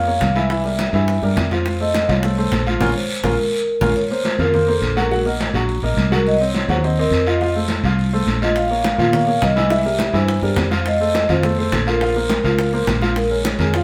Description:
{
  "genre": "latin, salsa",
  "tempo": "209 BPM",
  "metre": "4/4",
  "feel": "straight",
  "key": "Bb harmonic minor",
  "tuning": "A4 = 440 Hz",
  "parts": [
    { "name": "vibraphone with soft mallets", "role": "melody", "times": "0.0-13.8 s", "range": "A4 to F5", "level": "-23 LUFS", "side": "equal", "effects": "none" },
    { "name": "warm baby grand piano", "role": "accompaniment", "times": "0.0-13.8 s", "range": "E3 to Gb5", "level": "-25 LUFS", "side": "equal", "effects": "none" },
    { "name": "fingered electric bass", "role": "bass", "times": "0.0-13.8 s", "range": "Bb1 to Bb2", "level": "-23 LUFS", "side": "equal", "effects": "none" },
    { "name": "congas", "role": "percussion", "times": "0.1-13.8 s", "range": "none", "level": "-28 LUFS", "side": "equal", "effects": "none" },
    { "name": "bongos", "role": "percussion", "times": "0.2-3.9, 8.6-13.8 s", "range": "none", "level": "-30 LUFS", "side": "equal", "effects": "none" },
    { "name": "guiro", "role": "percussion", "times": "0.2-13.8 s", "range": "none", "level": "-30 LUFS", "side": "equal", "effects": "none" }
  ],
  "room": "wet studio reverb, RT60 0.8 s",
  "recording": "heard from further back in the room",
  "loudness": "-18 LUFS",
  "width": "mono",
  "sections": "0.0-4.0 A section; 4.0-13.2 A section",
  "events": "band accent 2.8-4.0; drum fill 3.5-4.0",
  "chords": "0.0 Bbm; 0.5 C7; 1.7 F7; 2.8 Bbmadd9; 4.0 Bbsus2; 5.1 Ebm/Bb; 6.3 Cdim; 7.4 F; 8.6 Bbm; 9.7 C7; 10.9 F7; 12.0 Bbmadd9; 13.2 Bbm7",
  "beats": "0.21 | 0.50 0.79 1.08 1.37 | 1.66 1.95 2.23 2.52 | 2.81 3.10 3.39 3.68 | 3.96 4.25 4.54 4.83 | 5.11 5.40 5.69 5.97 | 6.26 6.55 6.83 7.12 | 7.41 7.70 7.99 8.27 | 8.56 8.85 9.14 9.42 | 9.71 10.00 10.29 10.57 | 10.86 11.15 11.44 11.72 | 12.01 12.30 12.59 12.88 | 13.16 13.45 13.74"
}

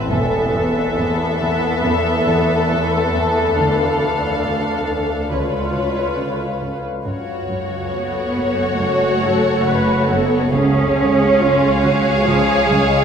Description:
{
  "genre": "cinematic, suspense film score",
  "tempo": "69 BPM",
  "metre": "4/4",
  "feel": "straight",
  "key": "F# harmonic minor from 7.1 s",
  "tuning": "A4 = 440 Hz",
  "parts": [
    { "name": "muted symphonic violin section", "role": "melody", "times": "0.0-13.0 s", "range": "C#5 to F5", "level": "-25 LUFS", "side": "left 4 dB", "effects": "none" },
    { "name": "muted symphonic violin section", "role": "second line", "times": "0.0-13.0 s", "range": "F#4 to C#5", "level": "-22 LUFS", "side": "left 2 dB", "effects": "none" },
    { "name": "muted symphonic viola section", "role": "accompaniment", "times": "0.0-13.0 s", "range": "B3 to B4", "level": "-24 LUFS", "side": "equal", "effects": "none" },
    { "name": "deep dark ambient pad", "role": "sustained chords", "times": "0.0-13.0 s", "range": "E#4 to F#5", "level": "-25 LUFS", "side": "equal", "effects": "chorus, built-in reverb" },
    { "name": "muted symphonic cello section", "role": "bass", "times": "0.0-13.0 s", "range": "C#2 to C#4", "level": "-21 LUFS", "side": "right 3 dB", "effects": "none" },
    { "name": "swarming drone", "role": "drone", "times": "0.0-13.0 s", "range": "F#1 to E2", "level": "-26 LUFS", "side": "equal", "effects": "built-in reverb, phaser" },
    { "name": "muted symphonic cello section", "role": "riff", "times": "0.1-13.0 s", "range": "E2 to D4", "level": "-27 LUFS", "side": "right 1 dB", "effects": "none" },
    { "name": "muted symphonic double bass section", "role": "bass", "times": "0.1-13.0 s", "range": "E1 to F#2", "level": "-25 LUFS", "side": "right 2 dB", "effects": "none" },
    { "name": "vibraphone with medium mallets", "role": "texture", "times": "0.1-13.0 s", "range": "A4 to C#6", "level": "-28 LUFS", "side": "equal", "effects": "none" }
  ],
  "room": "wet recital hall reverb, RT60 1.3 s",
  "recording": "recorded in a church or concert hall",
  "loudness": "-15 LUFS",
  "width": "side -7 dB against mid",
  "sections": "0.0-7.1 A section; 7.1-13.0 B section",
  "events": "none",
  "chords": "0.1 Esus4; 3.6 Dm; 5.3 C#7; 7.1 F#m; 10.5 C#",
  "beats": "| 0.10 0.97 1.84 2.71 | 3.58 4.45 5.32 6.19 | 7.06 7.93 8.80 9.67 | 10.54 11.41 12.28"
}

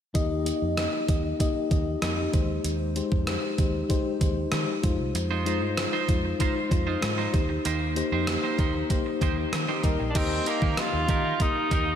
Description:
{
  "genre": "1980s-style pop",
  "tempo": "96 BPM",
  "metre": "4/4",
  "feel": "straight",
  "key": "unclear",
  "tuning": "A4 = 441 Hz",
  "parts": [
    { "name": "FM electric piano with soft pad layer", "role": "accompaniment", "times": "0.1-12.0 s", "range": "Ab3 to G5", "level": "-28 LUFS", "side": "left 4 dB", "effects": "chorus, tremolo, slapback echo" },
    { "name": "vintage muted fingered electric bass", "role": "bass", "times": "0.1-11.9 s", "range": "Bb1 to Eb3", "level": "-30 LUFS", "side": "right 1 dB", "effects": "none" },
    { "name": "gated 80s digital drum machine", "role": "drums", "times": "0.1-11.9 s", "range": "crash cymbal, hi-hat, kick drum, rim click", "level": "-27 LUFS", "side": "right 1 dB", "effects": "overdrive" },
    { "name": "clean electric guitar", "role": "riff", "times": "5.2-11.9 s", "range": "Ab3 to C5", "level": "-32 LUFS", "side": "right 6 dB", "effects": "lush chorus, digital delay, slapback echo" },
    { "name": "funky polysynth comp", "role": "stabs", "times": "9.7-10.1 s", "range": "Eb3 to Bb4", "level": "-35 LUFS", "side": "left 2 dB", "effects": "chorus" },
    { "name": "clear tenor saxophone", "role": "melody", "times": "10.1-12.0 s", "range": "Bb3 to F4", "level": "-27 LUFS", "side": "right 1 dB", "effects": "digital delay, slapback echo" }
  ],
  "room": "moderate lush hall reverb, RT60 2.5 s",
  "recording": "big arena sound",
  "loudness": "-24 LUFS",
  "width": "side -9 dB against mid",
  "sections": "0.1-10.2 A section; 10.2-12.0 B section",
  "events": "band accent 7.7-10.2",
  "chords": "0.1 Eb; 2.3 Abmaj7/Eb; 4.8 Fm7; 7.3 Cm7/Eb; 10.2 Eb",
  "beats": "| 0.15 0.78 1.40 2.02 | 2.65 3.27 3.90 4.53 | 5.15 5.78 6.40 7.03 | 7.65 8.28 8.90 9.53 | 10.15 10.78 11.40"
}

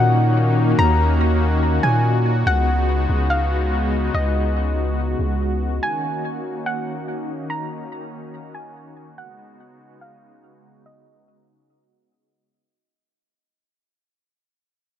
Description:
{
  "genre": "hip hop",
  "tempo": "143 BPM",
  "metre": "4/4",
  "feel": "half-time",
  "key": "unclear",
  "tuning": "A4 = 440 Hz",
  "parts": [
    { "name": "soft round pluck", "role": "melody", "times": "0.0-11.3 s", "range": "Eb5 to Bb5", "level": "-25 LUFS", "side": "left 1 dB", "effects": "chorus, low-pass filter, tape echo" },
    { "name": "warm analog pad", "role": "sustained chords", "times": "0.0-12.5 s", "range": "Db3 to Gb4", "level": "-23 LUFS", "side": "left 2 dB", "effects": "chorus, tremolo, low-pass filter" },
    { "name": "long sustained 808-style bass", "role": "bass", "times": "0.0-5.8 s", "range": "Db2 to Bb2", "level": "-19 LUFS", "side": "equal", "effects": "none" }
  ],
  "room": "light reverb",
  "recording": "none",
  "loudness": "-18 LUFS",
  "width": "side -10 dB against mid",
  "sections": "0.0-12.5 A section",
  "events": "fade-out 0.0-12.5; filter sweep 0.0-12.5",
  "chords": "0.0 Ebm7; 2.5 Db9sus4; 5.8 Ebm7; 9.2 Db9sus4",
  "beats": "0.37 | 0.79 1.21 1.63 2.04 | 2.46 2.88 3.30 3.72 | 4.14 4.56 4.98 5.40 | 5.82 6.24 6.66 7.08 | 7.50 7.92 8.34 8.76 | 9.18 9.60 10.02 10.44 | 10.86 11.28 11.70 12.12"
}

